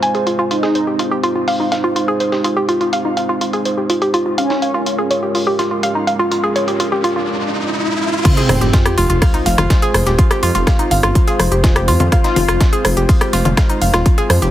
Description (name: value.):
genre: melodic techno.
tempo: 124 BPM.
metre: 4/4.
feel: straight.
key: F minor.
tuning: A4 = 439 Hz.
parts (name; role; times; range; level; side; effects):
dark analog pad; sustained chords; 0.0-14.5 s; Ab3 to C5; -22 LUFS; right 1 dB; wide subtle chorus, sidechain pumping.
woody wave-folded pluck; arpeggios; 0.0-14.5 s; Eb4 to Ab5; -17 LUFS; equal; chorus, sidechain pumping, dub echo.
dusty soul sampler-style drum kit; drums; 0.0-14.5 s; hi-hat, snare drum; -26 LUFS; left 1 dB; sidechain pumping on hats, high-pass filter on hats, low-pass filter on hats, high-pass filter on snare, low-pass filter on snare.
mellow synth brass; melody; 0.5-1.1, 4.4-5.0, 8.3-8.9, 12.1-12.8 s; C4 to F4; -22 LUFS; equal; chorus, vintage 12-bit sampler grit, tape echo.
riser and sub drop; sound effects; 6.6-10.2 s; none; -21 LUFS; equal; none.
house drum kit; drums; 8.2-14.5 s; congas, crash cymbal, hi-hat, rim click; -20 LUFS; left 1 dB; sidechain pumping on cymbals, low-pass filter on cymbals, sidechain pumping on hats, low-pass filter on hats, low-pass filter on snare, sidechain pumping on perc, low-pass filter on perc.
electronic kick drum; drums; 8.3-14.2 s; none; -13 LUFS; equal; none.
dark detuned saw bass; bass; 8.5-14.5 s; Eb1 to F2; -16 LUFS; equal; sidechain pumping.
room: light reverb.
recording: heavily compressed radio sound.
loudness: -13 LUFS.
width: side -12 dB against mid.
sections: 0.0-8.3 A section; 8.3-14.5 B section.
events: riser 6.6-8.3; drop 8.3-14.5; impact 8.3-10.2.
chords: 0.0 Ab; 4.4 Bbm7; 8.3 Fm.